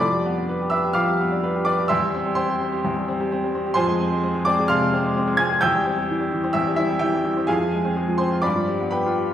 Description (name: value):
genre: classical, virtuoso piano study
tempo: 128 BPM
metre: 4/4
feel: rubato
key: C major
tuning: A4 = 440 Hz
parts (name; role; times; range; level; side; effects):
- bright baby grand piano; solo; 0.0-9.3 s; E2 to Ab6; -19 LUFS; equal; none
room: wet recital hall reverb, RT60 1.4 s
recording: heard from further back in the room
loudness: -19 LUFS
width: side -10 dB against mid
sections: 0.0-9.3 A section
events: none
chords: 0.0 G7/F; 1.9 C/E; 3.8 Fm; 5.6 C/E; 7.5 Fm; 8.4 G7